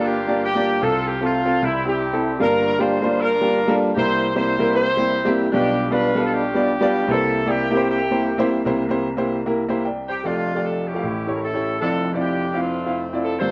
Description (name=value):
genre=gospel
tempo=153 BPM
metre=4/4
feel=swing 61% on 8ths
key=unclear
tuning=A4 = 440 Hz
part: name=warm horn section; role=melody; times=0.0-13.5 s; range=G3 to C5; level=-24 LUFS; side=equal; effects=none
part: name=clear upright piano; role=accompaniment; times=0.0-13.5 s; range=F1 to G5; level=-22 LUFS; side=equal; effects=none
room=moderate large studio reverb, RT60 0.9 s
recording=worn, warbling old tape, cassette tape, warbly pitch drift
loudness=-21 LUFS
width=mono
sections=0.0-8.7 A section; 8.7-10.2 B section; 10.2-13.5 C section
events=none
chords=0.0 Gm7; 0.8 F/C; 1.6 C; 2.4 Gm7; 4.0 C7; 5.5 G7/B; 7.1 C7; 10.2 F69; 11.0 A7; 11.8 Dm9/F